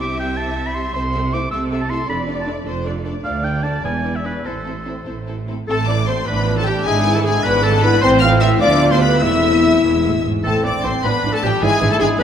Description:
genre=quick classical-period movement for symphony orchestra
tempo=103 BPM (dotted quarters)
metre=6/8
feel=rubato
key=A minor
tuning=A4 = 438 Hz
part: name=clear studio violin section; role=melody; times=0.0-12.2 s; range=A4 to F6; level=-25 LUFS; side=left 5 dB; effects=none
part: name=clear oboe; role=second line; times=0.0-12.2 s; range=G4 to E6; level=-24 LUFS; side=right 1 dB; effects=none
part: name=warm studio violin section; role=second line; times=0.0-12.2 s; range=G4 to F5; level=-27 LUFS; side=left 3 dB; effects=none
part: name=rich studio viola section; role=accompaniment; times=0.0-12.2 s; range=D3 to A4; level=-26 LUFS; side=right 2 dB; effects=none
part: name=mellow French horn section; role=sustained chords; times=0.0-12.2 s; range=G3 to F4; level=-22 LUFS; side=left 4 dB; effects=none
part: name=clear studio cello section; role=bass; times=0.0-12.2 s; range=D2 to C3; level=-23 LUFS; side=right 3 dB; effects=none
part: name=warm studio double bass section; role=bass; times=0.0-12.2 s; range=E1 to D2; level=-23 LUFS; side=right 3 dB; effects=none
part: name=mellow flute section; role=second line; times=5.7-12.2 s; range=G4 to F5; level=-25 LUFS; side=left 1 dB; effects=none
part: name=warm clarinet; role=second line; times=5.7-12.2 s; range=G4 to F5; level=-25 LUFS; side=left 2 dB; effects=none
part: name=clear bassoon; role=accompaniment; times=6.3-12.2 s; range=C4 to F4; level=-24 LUFS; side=right 1 dB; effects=none
room=moderate concert hall reverb, RT60 1.9 s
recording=none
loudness=-15 LUFS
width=side -8 dB against mid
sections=0.0-5.7 A section; 5.7-12.2 B section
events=none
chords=0.0 C; 1.0 Am/C; 2.1 Dm/F; 3.3 D5; 3.9 E7; 4.5 Am; 6.3 Dm/A; 6.9 E7/G#; 8.0 Am; 8.6 Bdim/D; 9.2 Am/E; 9.8 E; 10.4 Am; 11.0 Dm; 11.6 E7/G#

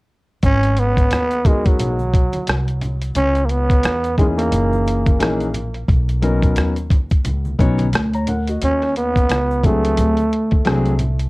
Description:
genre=hip hop, jazz-hop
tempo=88 BPM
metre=4/4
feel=swing 59% on 16ths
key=G# minor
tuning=A4 = 438 Hz
part: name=upright bass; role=bass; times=0.4-11.3 s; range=F#1 to E2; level=-20 LUFS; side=equal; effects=none
part: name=boom bap sampler-style drum kit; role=drums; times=0.4-11.3 s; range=hi-hat, kick drum, rim click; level=-17 LUFS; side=equal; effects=none
part: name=egg shaker and congas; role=percussion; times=0.4-11.3 s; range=none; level=-30 LUFS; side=equal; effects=none
part: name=growling trombone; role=melody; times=0.5-11.0 s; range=F#3 to C#4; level=-20 LUFS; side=right 1 dB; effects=cassette tape, analog delay
part: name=dark grand piano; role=accompaniment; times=1.5-10.9 s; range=E3 to A#5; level=-21 LUFS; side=left 2 dB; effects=cassette tape, plate reverb
room=light reverb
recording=home recording on cassette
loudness=-15 LUFS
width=side -22 dB against mid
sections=0.4-11.3 A section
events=none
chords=0.4 G#m9; 3.2 C#m9; 4.5 F#13; 5.9 Bmaj7; 8.6 D#m7b5; 10.0 D7#11

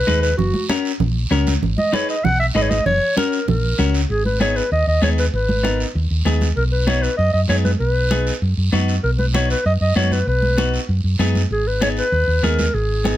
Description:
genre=latin, cumbia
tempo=194 BPM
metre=4/4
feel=straight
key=G# minor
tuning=A4 = 444 Hz
part: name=mellow clarinet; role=melody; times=0.0-13.2 s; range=F#4 to F#5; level=-20 LUFS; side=equal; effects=none
part: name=clean electric guitar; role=accompaniment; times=0.1-13.2 s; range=B3 to B4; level=-23 LUFS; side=left 4 dB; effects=none
part: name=hollow-body short-scale fingered electric bass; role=bass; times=0.1-13.2 s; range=F#1 to F#2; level=-19 LUFS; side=equal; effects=none
part: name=congas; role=percussion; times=0.1-13.2 s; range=none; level=-24 LUFS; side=right 3 dB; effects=none
part: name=guiro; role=percussion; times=0.1-13.2 s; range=none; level=-31 LUFS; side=right 4 dB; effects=none
room=little or no reverb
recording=close, detailed microphones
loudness=-16 LUFS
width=side -13 dB against mid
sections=0.0-4.1 A section; 4.1-13.2 B section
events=none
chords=0.4 F#; 1.6 G#m; 2.9 F#; 4.1 G#m; 6.6 B; 11.5 G#m

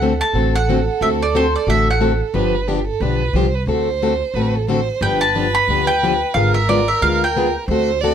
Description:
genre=acoustic string swing (jazz manouche)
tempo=180 BPM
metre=4/4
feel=swing 59% on 8ths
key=D mixolydian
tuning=A4 = 440 Hz
part: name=mandolin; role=melody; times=0.0-2.2, 5.0-7.5 s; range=C5 to B5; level=-19 LUFS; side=equal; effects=none
part: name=warm violin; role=second line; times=0.0-8.1 s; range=G4 to D5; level=-22 LUFS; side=right 7 dB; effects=none
part: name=picked plugged-in steel-string acoustic guitar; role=accompaniment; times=0.0-8.1 s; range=D3 to A4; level=-20 LUFS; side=left 3 dB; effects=none
part: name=upright bass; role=bass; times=0.0-8.1 s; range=G1 to D2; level=-21 LUFS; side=right 1 dB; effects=none
room=light reverb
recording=close, detailed microphones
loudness=-15 LUFS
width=side -8 dB against mid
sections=0.0-8.1 A section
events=none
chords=0.0 D7; 2.3 G7; 3.7 D7; 5.0 G7; 6.4 G#dim7

